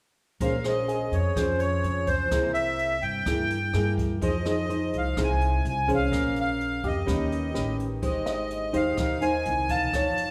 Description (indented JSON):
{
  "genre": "bossa nova",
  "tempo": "126 BPM",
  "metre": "4/4",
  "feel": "straight",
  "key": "Bb minor",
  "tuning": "A4 = 443 Hz",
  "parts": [
    { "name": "accordion", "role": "melody", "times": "0.4-10.3 s", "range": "C5 to A5", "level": "-31 LUFS", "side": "equal", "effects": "light tremolo tuning" },
    { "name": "nylon-string guitar", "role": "accompaniment", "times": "0.4-10.3 s", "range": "C3 to C#5", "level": "-31 LUFS", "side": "equal", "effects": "none" },
    { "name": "upright bass", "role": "bass", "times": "0.4-10.3 s", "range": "F1 to G2", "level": "-33 LUFS", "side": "equal", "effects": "none" },
    { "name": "jazz brush drum kit", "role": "drums", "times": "0.4-10.3 s", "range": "hi-hat, kick drum, rim click", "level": "-35 LUFS", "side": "equal", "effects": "none" },
    { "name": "warm grand piano", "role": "accompaniment", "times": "0.9-2.3, 6.8-10.3 s", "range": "G4 to F5", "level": "-38 LUFS", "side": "equal", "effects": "none" }
  ],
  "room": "wet recital hall reverb, RT60 1.5 s",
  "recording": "recorded in a church or concert hall",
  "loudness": "-26 LUFS",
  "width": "mono",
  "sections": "0.4-10.3 A section",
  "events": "none",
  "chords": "0.4 Bbm9; 2.3 C7b13; 4.2 Fm7; 6.1 Bbm9; 7.1 Ebaug7; 8.0 Abmaj7",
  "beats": "| 0.40 0.88 1.36 1.83 | 2.31 2.79 3.26 3.74 | 4.22 4.69 5.17 5.65 | 6.12 6.60 7.08 7.55 | 8.03 8.51 8.99 9.46 | 9.94"
}